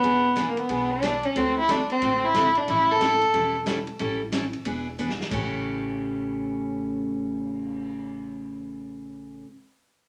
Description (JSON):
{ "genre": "country, western swing", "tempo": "182 BPM", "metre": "4/4", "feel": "swing 63% on 8ths", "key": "A mixolydian", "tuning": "A4 = 440 Hz", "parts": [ { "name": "dark fiddle", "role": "melody", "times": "0.0-3.6 s", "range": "Bb3 to A4", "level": "-24 LUFS", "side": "equal", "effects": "none" }, { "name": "picked steel-string acoustic guitar", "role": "accompaniment", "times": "0.0-9.5 s", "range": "A2 to A4", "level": "-32 LUFS", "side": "equal", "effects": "none" }, { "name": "upright bass", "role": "bass", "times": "0.0-9.4 s", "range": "E1 to D2", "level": "-41 LUFS", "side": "equal", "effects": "none" }, { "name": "vintage drum kit", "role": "drums", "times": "0.0-7.9 s", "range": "crash cymbal, cymbal swell, hi-hat, kick drum, ride cymbal, snare drum", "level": "-39 LUFS", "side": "equal", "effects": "none" } ], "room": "wet small room reverb, RT60 0.5 s", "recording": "none", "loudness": "-25 LUFS", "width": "mono", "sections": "0.0-5.3 A section; 5.3-8.0 B section", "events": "drum fill 5.0-5.3", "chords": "0.0 E7; 1.4 D7; 2.7 A7; 4.7 E7; 5.3 A7", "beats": "| 0.04 0.37 0.70 1.03 | 1.36 1.69 2.02 2.35 | 2.68 3.01 3.34 3.67 | 4.00 4.33 4.66 4.99 | 5.31 5.64 5.97 6.30 | 6.63 6.96 7.29 7.62" }